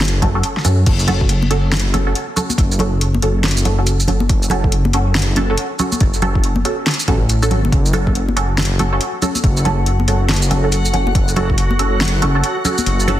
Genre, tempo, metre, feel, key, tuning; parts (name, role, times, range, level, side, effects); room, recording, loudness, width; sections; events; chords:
deep dubstep; 140 BPM; 4/4; swing 62% on 16ths, half-time; F# minor; A4 = 440 Hz
dark detuned saw bass; bass; 0.0-13.2 s; F#1 to F#2; -17 LUFS; equal
deep house drum kit; drums; 0.0-13.2 s; crash cymbal, hi-hat, shaker, snare drum; -21 LUFS; equal; overdrive, small room ambience
filtered dub chord stab; stabs; 0.2-13.2 s; C#4 to A4; -21 LUFS; right 2 dB; phaser, ensemble chorus, dub echo
electronic kick drum; drums; 0.2-11.6 s; -18 LUFS; equal; overdrive, small room ambience
congas; percussion; 0.2-13.2 s; -24 LUFS; equal; dub echo
backwards swelling texture; texture; 8.6-13.2 s; F#4 to F#5; -25 LUFS; left 1 dB; built-in reverb
light reverb, digital ambience; dense, heavily limited modern master; -14 LUFS; side -13 dB against mid
0.9-13.2 A section
drop 0.9-13.2; kick drops out 12.9-13.2
0.0 F#m